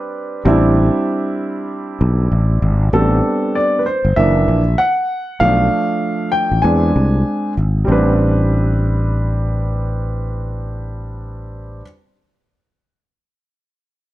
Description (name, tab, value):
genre	hip hop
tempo	97 BPM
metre	4/4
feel	swing 59% on 16ths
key	A minor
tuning	A4 = 440 Hz
part	warm upright piano	accompaniment	0.0-11.8 s	E3 to G#5	-17 LUFS	right 1 dB	plate reverb
part	sustaining fretless electric bass	bass	0.5-11.8 s	F#1 to E2	-16 LUFS	equal	none
room	moderate studio reverb, RT60 0.6 s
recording	dark, warm production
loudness	-14 LUFS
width	side -15 dB against mid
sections	0.0-2.9 A section; 2.9-7.9 B section; 7.9-10.4 C section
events	upright piano solo 2.9-7.9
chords	0.0 Am11; 4.2 F#aug7; 5.4 Bm7b5; 6.6 E7b13; 7.9 Am11